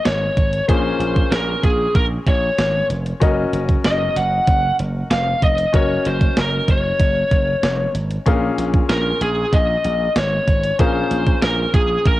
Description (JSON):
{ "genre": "1980s-style pop", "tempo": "95 BPM", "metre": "4/4", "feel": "straight", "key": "Bb minor", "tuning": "A4 = 439 Hz", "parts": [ { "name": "lead guitar through a small cranked amp", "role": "melody", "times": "0.0-12.2 s", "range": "Ab4 to Gb5", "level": "-20 LUFS", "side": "left 1 dB", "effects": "overdrive, cassette tape" }, { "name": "clear concert grand piano", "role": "accompaniment", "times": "0.0-12.2 s", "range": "Bb2 to F5", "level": "-25 LUFS", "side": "left 4 dB", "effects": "cassette tape" }, { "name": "slap bass", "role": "bass", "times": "0.1-12.2 s", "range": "F1 to Bb1", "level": "-22 LUFS", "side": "right 1 dB", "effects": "none" }, { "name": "clean 12-bit digital drum machine", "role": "drums", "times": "0.1-12.2 s", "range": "hi-hat, kick drum, snare drum", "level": "-18 LUFS", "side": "right 1 dB", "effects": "cassette tape" } ], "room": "light reverb, digital ambience", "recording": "home recording on cassette", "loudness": "-15 LUFS", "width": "side -16 dB against mid", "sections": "0.0-12.2 A section", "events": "none", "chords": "0.0 Bbm7; 3.2 Gb6; 5.7 Ebm7/Gb; 8.3 Bbm7" }